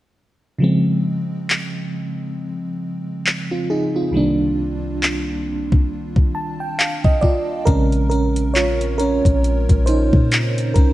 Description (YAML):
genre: contemporary R&B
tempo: 68 BPM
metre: 4/4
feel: swing 58% on 16ths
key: Bb dorian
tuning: A4 = 441 Hz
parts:
  - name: FM electric piano with soft pad layer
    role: accompaniment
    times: 0.6-10.9 s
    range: C2 to A5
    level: -20 LUFS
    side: right 1 dB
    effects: chorus, tremolo
  - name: smooth R&B drum kit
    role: drums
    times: 1.5-10.9 s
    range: handclaps, hi-hat, kick drum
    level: -18 LUFS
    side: equal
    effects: vintage 12-bit sampler grit
  - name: clean 808-style bass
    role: bass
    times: 7.7-10.9 s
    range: Bb1 to Bb2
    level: -19 LUFS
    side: equal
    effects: none
room: light reverb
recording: none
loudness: -17 LUFS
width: side -15 dB against mid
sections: 0.6-7.7 A section; 7.7-10.9 B section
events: FM electric piano fill 5.9-7.7; FM electric piano solo 7.7-10.9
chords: 0.6 Dbmaj9; 4.1 Cm9; 7.7 Bbm9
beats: | 0.61 1.49 2.38 3.26 | 4.14 5.02 5.90 6.79 | 7.67 8.55 9.43 10.32